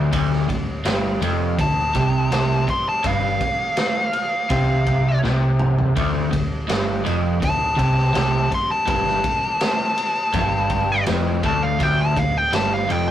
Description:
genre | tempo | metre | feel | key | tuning
blues rock power trio and southern rock | 82 BPM | 4/4 | straight | D minor | A4 = 441 Hz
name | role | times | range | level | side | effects
crunchy overdriven guitar | riff | 0.0-13.1 s | D2 to C3 | -20 LUFS | equal | none
vintage muted picked electric bass | bass | 0.0-13.1 s | D1 to C2 | -28 LUFS | equal | none
raw garage drum kit | drums | 0.1-13.1 s | kick drum, ride cymbal, snare drum, toms | -25 LUFS | equal | none
fuzz lead guitar | melody | 1.6-13.1 s | F5 to C6 | -21 LUFS | left 1 dB | distortion
room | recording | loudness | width
light reverb | rough rehearsal-room recording, warm saturation | -18 LUFS | side -11 dB against mid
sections
0.0-13.1 A section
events
lead electric guitar solo 0.0-13.1; drum fill 5.2-6.0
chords
0.0 Dm

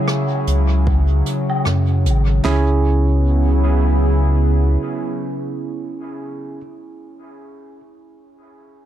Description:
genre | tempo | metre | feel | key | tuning
ambient dub | 76 BPM | 4/4 | swing 58% on 16ths | C# minor | A4 = 440 Hz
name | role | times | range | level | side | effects
warbly tape-like pad | sustained chords | 0.0-6.4 s | C#3 to G#4 | -22 LUFS | equal | chorus, built-in reverb, vintage 12-bit sampler grit
handpan | arpeggios | 0.0-6.6 s | G#3 to G#4 | -36 LUFS | right 5 dB | none
jazz brush drum kit | drums | 0.1-2.2 s | hi-hat, rim click, woodblock | -28 LUFS | left 1 dB | dub echo
warm sub bass | bass | 0.5-4.8 s | G#1 to F#2 | -15 LUFS | equal | none
deep house drum kit | drums | 0.9-2.7 s | handclaps, kick drum, snare drum | -23 LUFS | equal | none
barky tine electric piano | stabs | 2.4-6.6 s | C#4 to G#4 | -25 LUFS | right 4 dB | dub echo
room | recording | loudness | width
little or no reverb | echo-heavy mix | -15 LUFS | side -11 dB against mid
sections
0.0-2.4 A section; 2.4-5.6 B section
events
none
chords
0.0 C#m

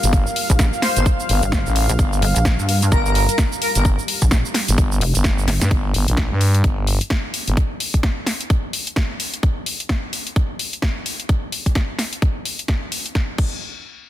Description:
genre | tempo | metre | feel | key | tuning
bass house | 129 BPM | 4/4 | swing 59% on 16ths | G minor | A4 = 440 Hz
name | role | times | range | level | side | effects
dark analog pad | sustained chords | 0.0-5.7 s | G3 to F5 | -26 LUFS | left 1 dB | chorus, sidechain pumping
growling FM bass | bass | 0.0-7.6 s | G1 to G2 | -18 LUFS | equal | overdrive, sidechain pumping
house drum kit | drums | 0.0-13.5 s | cabasa, crash cymbal, hi-hat, snare drum | -23 LUFS | left 1 dB | none
electronic kick drum | drums | 0.1-13.5 s | none | -20 LUFS | equal | none
pulsing pluck wobble bass | bass | 0.5-5.6 s | F1 to G2 | -19 LUFS | equal | chorus, tube saturation, sidechain pumping
airy dreamy lead | melody | 0.8-3.8 s | Bb4 to C5 | -25 LUFS | equal | chorus, dub echo
room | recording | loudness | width
digital ambience | dense, heavily limited modern master | -17 LUFS | side -13 dB against mid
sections
0.0-5.7 A section; 5.7-13.2 B section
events
drop 0.0-5.7; drum fill 5.5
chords
0.0 Gm; 5.7 N.C.

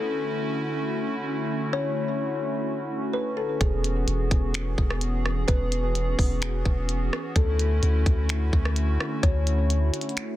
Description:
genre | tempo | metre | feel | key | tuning
hip hop, atmospheric cloud-rap | 128 BPM | 4/4 | half-time | unclear | A4 = 440 Hz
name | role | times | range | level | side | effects
kalimba | melody | 0.0-10.4 s | G#4 to C#5 | -32 LUFS | left 3 dB | low-pass filter, tape echo
hollow soft pad | sustained chords | 0.0-10.4 s | D3 to G#4 | -30 LUFS | right 1 dB | chorus, sidechain pumping
long sustained 808-style bass | bass | 3.6-9.9 s | E1 to D2 | -24 LUFS | equal | none
glitchy drum kit | drums | 3.6-10.3 s | finger snaps, hi-hat, kick drum, rim click | -25 LUFS | equal | soft clipping on snare
room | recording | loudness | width
digital ambience | dense, heavily limited modern master | -23 LUFS | side -14 dB against mid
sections
0.0-10.4 A section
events
none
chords
0.0 Dmaj9; 3.6 E69; 7.4 Dmaj9

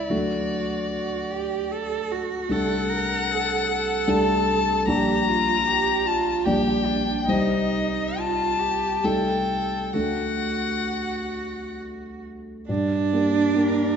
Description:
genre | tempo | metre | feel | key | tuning
classical, slow romantic movement for piano trio | 64-78 BPM | 3/4 | rubato | G minor | A4 = 440 Hz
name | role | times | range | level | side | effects
rich violin | melody | 0.0-14.0 s | Bb4 to Bb5 | -26 LUFS | left 5 dB | none
rich cello | second line | 0.0-14.0 s | D4 to Bb4 | -26 LUFS | right 6 dB | none
dark grand piano | accompaniment | 0.0-14.0 s | Bb1 to D5 | -26 LUFS | left 1 dB | none
room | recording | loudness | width
wet recital hall reverb, RT60 1.8 s | nothing above 7.7 kHz | -21 LUFS | side -7 dB against mid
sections
0.0-12.7 A section; 12.7-14.0 B section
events
none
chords
0.1 D; 2.5 D7/C; 4.9 Gm/Bb; 7.3 Cm; 9.1 Adim/C; 9.9 D; 12.7 Gm

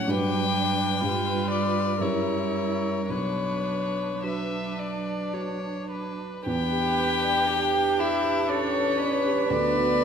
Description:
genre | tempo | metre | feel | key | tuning
classical, slow romantic movement for piano quintet | 52-65 BPM | 3/4 | rubato | B minor | A4 = 443 Hz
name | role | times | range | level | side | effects
warm violin | melody | 0.0-10.0 s | B4 to G5 | -28 LUFS | left 6 dB | none
warm cello | second line | 0.0-10.0 s | F#3 to B4 | -29 LUFS | right 6 dB | none
warm violin | second line | 0.0-10.0 s | C#4 to E5 | -31 LUFS | left 1 dB | none
dark grand piano | accompaniment | 0.0-10.0 s | B1 to D5 | -30 LUFS | equal | none
dark viola | accompaniment | 0.0-10.0 s | B3 to F4 | -34 LUFS | right 2 dB | none
room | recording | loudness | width
wet scoring stage reverb, RT60 1.7 s | none | -23 LUFS | side -7 dB against mid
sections
0.0-6.5 A section; 6.5-10.0 B section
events
none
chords
0.1 Gmaj7; 1.0 G7; 2.0 F#7b9; 3.1 Bm; 6.5 Em7; 9.5 Bm/D

